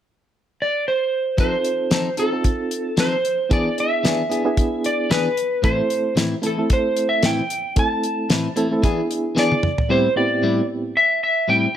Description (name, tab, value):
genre	straight-eighth soul blues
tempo	113 BPM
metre	4/4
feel	swing 56% on 16ths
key	A harmonic minor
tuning	A4 = 440 Hz
part	electric slide guitar	melody	0.6-11.8 s	A4 to A5	-20 LUFS	right 1 dB	slapback echo
part	barky reed electric piano	accompaniment	1.4-10.9 s	A2 to A4	-23 LUFS	right 2 dB	overdrive, fast tremolo
part	clean electric guitar	stabs	1.4-11.7 s	A2 to A4	-24 LUFS	left 3 dB	none
part	damped 70s drum kit	drums	1.4-9.9 s	hi-hat, kick drum, snare drum, toms	-21 LUFS	equal	none
room	light reverb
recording	none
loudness	-18 LUFS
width	side -10 dB against mid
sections	0.0-1.4 A section; 1.4-9.9 B section; 9.9-11.8 C section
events	drum fill 9.4-9.9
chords	0.0 N.C.; 1.4 F7; 3.5 E7; 5.6 Am; 8.8 E7; 9.9 Am7